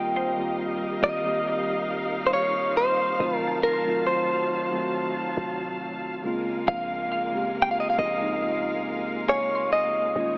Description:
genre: contemporary R&B.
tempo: 69 BPM.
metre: 4/4.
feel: straight.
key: unclear.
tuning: A4 = 440 Hz.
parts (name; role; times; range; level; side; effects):
direct-recorded clean electric guitar; melody; 0.0-10.4 s; Bb4 to G5; -27 LUFS; equal; tape echo.
mellow tine electric piano; accompaniment; 0.0-10.4 s; Db3 to G4; -34 LUFS; equal; none.
dark studio string section; sustained chords; 0.0-10.4 s; Eb3 to A5; -34 LUFS; equal; none.
warm 808-style bass; bass; 0.0-10.4 s; Eb1 to Bb1; -42 LUFS; equal; none.
glassy wavetable pluck; texture; 0.2-10.4 s; C5 to C6; -39 LUFS; equal; none.
room: light reverb, digital ambience.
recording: AM radio sound.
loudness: -26 LUFS.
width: mono.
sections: 0.0-10.4 A section.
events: none.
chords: 0.0 Abmaj13; 3.2 F7b9; 6.2 Bbm9.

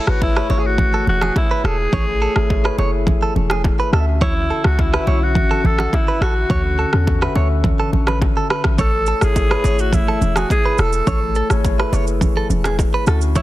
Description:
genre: afrobeats.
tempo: 105 BPM.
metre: 4/4.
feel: straight.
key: A major.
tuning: A4 = 441 Hz.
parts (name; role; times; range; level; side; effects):
raspy alto saxophone; melody; 0.0-13.4 s; E4 to A4; -22 LUFS; equal; ping-pong delay.
mellow tine electric piano; accompaniment; 0.0-13.4 s; D3 to E5; -25 LUFS; left 4 dB; phaser.
direct-recorded clean electric guitar; riff; 0.0-13.4 s; F#4 to C#5; -25 LUFS; right 4 dB; ping-pong delay.
warm 808-style bass; bass; 0.1-13.4 s; E1 to E2; -18 LUFS; equal; none.
afro-pop drum kit; drums; 0.1-13.4 s; kick drum, rim click, shaker; -20 LUFS; equal; soft clipping on snare, vintage 12-bit sampler grit.
bongos and congas; percussion; 0.2-13.4 s; none; -26 LUFS; right 3 dB; none.
room: digital ambience.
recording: dense, heavily limited modern master.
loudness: -15 LUFS.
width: side -16 dB against mid.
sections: 0.0-13.4 A section.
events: break 0.0-8.8.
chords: 0.0 Amaj7; 3.9 Dmaj9; 8.8 Amaj7.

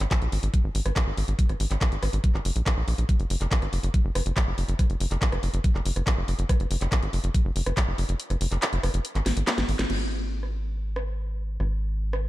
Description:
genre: psychedelic trance.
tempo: 141 BPM.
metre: 4/4.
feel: straight.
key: unclear.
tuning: A4 = 440 Hz.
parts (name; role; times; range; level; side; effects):
tight sequencer bass; bass; 0.0-12.3 s; F#1 to A#1; -26 LUFS; equal; none.
drum and bass drum kit; drums; 0.0-12.2 s; crash cymbal, handclaps, hi-hat, rim click, snare drum; -30 LUFS; equal; none.
electronic kick drum; drums; 0.1-7.9 s; none; -23 LUFS; equal; none.
room: little or no reverb.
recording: dark, warm production.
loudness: -23 LUFS.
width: side -16 dB against mid.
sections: 0.0-9.9 A section; 9.9-12.3 B section.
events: kick drops out 8.2-9.9; drum fill 9.3-9.9; band accent 9.8.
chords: none.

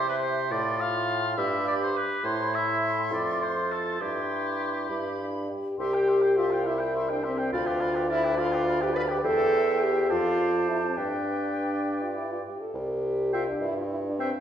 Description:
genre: quick classical-period movement for wind quintet.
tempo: 69 BPM (dotted quarters).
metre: 6/8.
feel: straight.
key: C major.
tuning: A4 = 442 Hz.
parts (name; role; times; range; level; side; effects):
silver concert flute; melody; 0.0-14.3 s; G5 to C6; -35 LUFS; left 5 dB; none.
warm oboe; second line; 0.0-14.3 s; G4 to G5; -32 LUFS; left 1 dB; none.
bright clarinet; accompaniment; 0.0-14.3 s; E4 to D5; -34 LUFS; right 5 dB; none.
clear French horn; accompaniment; 0.0-14.3 s; C4 to B4; -28 LUFS; equal; none.
mellow bassoon; bass; 0.0-14.3 s; C2 to C3; -30 LUFS; right 1 dB; none.
room: wet recital hall reverb, RT60 1.4 s.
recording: recorded in a church or concert hall.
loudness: -24 LUFS.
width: side -9 dB against mid.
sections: 0.0-5.8 A section; 5.8-14.4 B section.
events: none.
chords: 0.0 C; 0.5 F/A; 1.4 G; 2.2 Am; 3.1 F5; 4.0 C/G; 4.9 G; 5.8 C; 7.5 G7/D; 9.2 C/E; 10.1 Dm7/F; 11.0 G; 12.7 C.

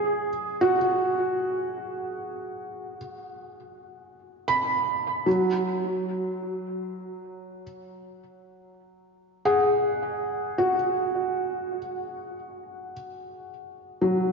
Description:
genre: ambient.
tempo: free time.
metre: none.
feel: none.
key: unclear.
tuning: A4 = 440 Hz.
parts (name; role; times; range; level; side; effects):
felt-muted upright piano; solo; 0.0-14.3 s; F#3 to B5; -25 LUFS; right 1 dB; lush chorus, analog delay.
room: wet lush hall reverb, RT60 2.6 s.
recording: dreamy mix soaked in reverb, nothing above 7.5 kHz.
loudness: -24 LUFS.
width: side -4 dB against mid.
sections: 0.0-5.3 A section; 5.3-14.3 B section.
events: none.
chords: 0.0 B5; 5.3 F#sus2.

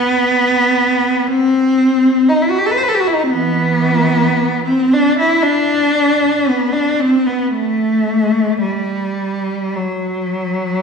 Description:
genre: classical, free, expressive piece for unaccompanied cello.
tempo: 52-60 BPM.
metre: 4/4.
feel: rubato.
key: unclear.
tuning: A4 = 440 Hz.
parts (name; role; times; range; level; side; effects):
rich cello; solo; 0.0-10.8 s; E3 to C5; -13 LUFS; equal; none.
room: wet recital hall reverb, RT60 1.4 s.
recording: heard from further back in the room.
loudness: -13 LUFS.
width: side -5 dB against mid.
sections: 0.0-10.8 A section.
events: none.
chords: none.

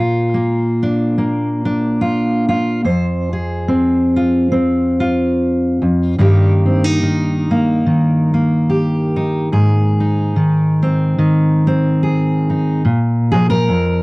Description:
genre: folk, solo fingerstyle acoustic guitar.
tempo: 72 BPM.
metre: 4/4.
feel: swing 56% on 8ths.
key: Bb mixolydian.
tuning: A4 = 440 Hz.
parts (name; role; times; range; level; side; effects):
fingerpicked steel-string acoustic guitar; solo; 0.0-14.0 s; F2 to C5; -13 LUFS; equal; cassette tape.
room: moderate booth ambience, RT60 0.2 s.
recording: home recording on cassette, faint mains hum.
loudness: -13 LUFS.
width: side -25 dB against mid.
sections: 0.0-12.9 A section; 12.9-14.0 B section.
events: none.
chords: 0.0 Bb; 2.8 Fm; 6.2 Eb/G; 9.5 Ab; 12.9 Bb5.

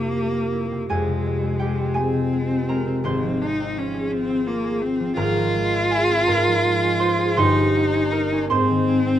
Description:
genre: classical, romantic duo for cello and harp.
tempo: 55 BPM (dotted quarters).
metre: 6/8.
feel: rubato.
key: F minor, Ab major from 5.2 s.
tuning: A4 = 438 Hz.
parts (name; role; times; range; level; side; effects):
rich cello; melody; 0.0-9.2 s; Ab3 to F4; -22 LUFS; left 1 dB; none.
concert harp; accompaniment; 0.0-9.2 s; F1 to C6; -22 LUFS; right 1 dB; none.
room: light reverb.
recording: none.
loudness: -19 LUFS.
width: side -11 dB against mid.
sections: 0.0-9.2 A section.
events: none.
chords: 0.0 C7/F; 0.9 Fm; 3.1 Fm/Ab; 5.2 Ab; 6.3 Db/Ab; 7.4 Eb7/G; 8.5 Ab.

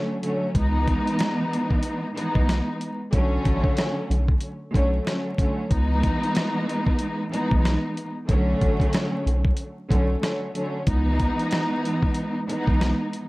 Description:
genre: hip hop, boom-bap hip-hop.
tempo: 93 BPM.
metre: 4/4.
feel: swing 62% on 16ths.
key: unclear.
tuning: A4 = 440 Hz.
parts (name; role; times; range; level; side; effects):
warm studio string section; accompaniment; 0.0-13.2 s; D3 to D#4; -24 LUFS; equal; cassette tape.
dusty soul sampler-style drum kit; drums; 0.2-13.3 s; hi-hat, kick drum, rim click, snare drum; -24 LUFS; equal; none.
soft dub sub bass; bass; 0.6-12.9 s; A1 to C#2; -23 LUFS; equal; none.
room: light reverb.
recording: dark, warm production, vinyl crackle.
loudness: -21 LUFS.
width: side -21 dB against mid.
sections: 0.0-13.3 A section.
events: none.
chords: 0.0 Bm9 (rootless); 0.5 C#m9; 3.1 Bm9; 5.7 C#m9; 8.3 Bm9; 10.9 C#m9.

